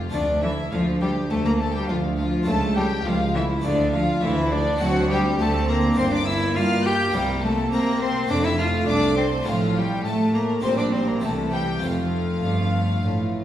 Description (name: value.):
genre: classical, baroque-style concerto movement with solo episodes.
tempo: 103 BPM.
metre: 4/4.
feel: straight.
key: F major.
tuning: A4 = 440 Hz.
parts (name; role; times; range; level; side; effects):
warm chamber violin section; second line; 0.0-13.4 s; D4 to G5; -28 LUFS; left 2 dB; none.
harpsichord; accompaniment; 0.0-13.4 s; C2 to A4; -34 LUFS; equal; none.
rich chamber cello section; bass; 0.0-13.4 s; C2 to C4; -27 LUFS; right 2 dB; none.
rich chamber double bass section; bass; 0.0-13.4 s; F1 to C3; -28 LUFS; right 2 dB; none.
rich cello; melody; 0.1-13.4 s; D3 to G4; -25 LUFS; left 1 dB; none.
warm chamber violin section; melody; 0.1-13.4 s; D5 to G6; -29 LUFS; left 2 dB; none.
warm chamber viola section; accompaniment; 0.1-13.4 s; E3 to C4; -30 LUFS; right 1 dB; none.
room: wet recital hall reverb, RT60 1.4 s.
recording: heard from further back in the room.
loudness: -20 LUFS.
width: side -11 dB against mid.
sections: 0.0-13.4 A section.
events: none.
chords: 0.1 Dm; 2.5 A/C#; 3.6 Dm; 4.8 D5; 6.0 Gm; 7.1 C7; 8.3 F; 9.5 F/A; 10.6 Gm/Bb; 11.2 C; 11.8 F.